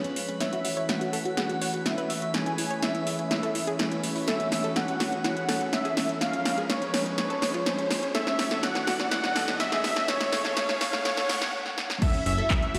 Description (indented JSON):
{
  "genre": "progressive house",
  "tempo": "124 BPM",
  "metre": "4/4",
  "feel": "straight",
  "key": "F# minor",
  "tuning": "A4 = 440 Hz",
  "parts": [
    { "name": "unison lead", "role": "melody", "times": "0.0-12.8 s", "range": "C#5 to G#5", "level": "-32 LUFS", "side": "equal", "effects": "cassette tape, sidechain pumping, dub echo" },
    { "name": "warm analog pad", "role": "sustained chords", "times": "0.0-12.8 s", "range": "C#3 to C#5", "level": "-36 LUFS", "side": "equal", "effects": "lush chorus, sidechain pumping" },
    { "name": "analog pluck", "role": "arpeggios", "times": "0.0-12.8 s", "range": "A3 to C#5", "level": "-37 LUFS", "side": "equal", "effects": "chorus, sidechain pumping, dub echo" },
    { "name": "deep house drum kit", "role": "drums", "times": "0.0-12.8 s", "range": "crash cymbal, handclaps, hi-hat, snare drum", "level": "-32 LUFS", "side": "equal", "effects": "overdrive" },
    { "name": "riser", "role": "sound effects", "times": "1.8-11.5 s", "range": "none", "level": "-41 LUFS", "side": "equal", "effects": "none" },
    { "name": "drifting glass-harmonics texture", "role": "texture", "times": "0.0-11.5 s", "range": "B4 to B5", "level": "-46 LUFS", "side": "equal", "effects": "chorus, built-in reverb, sidechain pumping" },
    { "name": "electronic kick drum", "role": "drums", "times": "12.0-12.6 s", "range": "none", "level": "-27 LUFS", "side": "equal", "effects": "overdrive" },
    { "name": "fat analog bass", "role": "bass", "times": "12.3-12.8 s", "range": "F#1", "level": "-30 LUFS", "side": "equal", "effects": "sidechain pumping" }
  ],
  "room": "wet lush hall reverb, RT60 2.3 s",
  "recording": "played on a big sound system in a bare room, large studio reverb, high-pass filter",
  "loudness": "-27 LUFS",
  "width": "mono",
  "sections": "0.0-12.0 A section",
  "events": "build-up 0.0-12.0; drum fill 0.0-11.5, 11.7-12.0; filter sweep on synth pluck 0.0-12.0; filter sweep on analog synth lead 0.0-12.0; stop 11.5-12.0",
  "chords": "0.4 F#m7; 2.3 Amaj7; 4.3 F#m7; 6.2 C#; 8.1 F#m7; 10.1 Amaj7; 12.0 F#m7",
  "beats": "| 0.41 0.89 1.37 1.86 | 2.34 2.83 3.31 3.79 | 4.28 4.76 5.25 5.73 | 6.21 6.70 7.18 7.66 | 8.15 8.63 9.12 9.60 | 10.08 10.57 11.05 11.54 | 12.02 12.50"
}